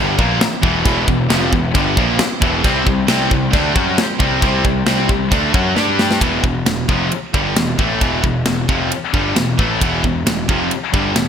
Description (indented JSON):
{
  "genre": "heavy metal",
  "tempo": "134 BPM",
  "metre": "4/4",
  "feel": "straight",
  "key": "E minor",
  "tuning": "A4 = 441 Hz",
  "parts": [
    { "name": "dark chamber string section", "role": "sustained chords", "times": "0.0-6.2 s", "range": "G3 to G5", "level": "-29 LUFS", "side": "equal", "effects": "none" },
    { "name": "distorted electric guitar", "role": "riff", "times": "0.0-11.3 s", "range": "E2 to G4", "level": "-21 LUFS", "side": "right 10 dB", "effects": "overdrive" },
    { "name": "distorted electric guitar", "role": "riff", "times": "0.0-11.3 s", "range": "E2 to G4", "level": "-23 LUFS", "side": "left 1 dB", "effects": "overdrive" },
    { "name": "heavy high-gain guitar", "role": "riff", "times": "0.0-11.3 s", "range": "E2 to G4", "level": "-20 LUFS", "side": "left 11 dB", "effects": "distortion" },
    { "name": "fuzz picked electric bass", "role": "bass", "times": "0.0-11.3 s", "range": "E1 to G2", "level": "-22 LUFS", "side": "equal", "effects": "overdrive" },
    { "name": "tight metal drum kit", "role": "drums", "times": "0.2-11.3 s", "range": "china cymbal, kick drum, ride cymbal, snare drum", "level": "-18 LUFS", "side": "equal", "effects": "gated reverb" }
  ],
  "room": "light reverb, small room ambience",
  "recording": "bright 1980s-style digital production",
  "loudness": "-14 LUFS",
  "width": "side -8 dB against mid",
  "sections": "0.0-6.2 A section; 6.2-11.3 B section",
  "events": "drum fill 5.8-6.2",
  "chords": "0.0 Em; 2.6 C5; 5.8 G5; 6.2 Em",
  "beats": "0.40 | 0.85 1.30 1.74 2.19 | 2.64 3.08 3.53 3.98 | 4.42 4.87 5.32 5.77 | 6.21 6.66 7.11 7.56 | 8.01 8.46 8.91 9.36 | 9.81 10.26 10.71 11.16"
}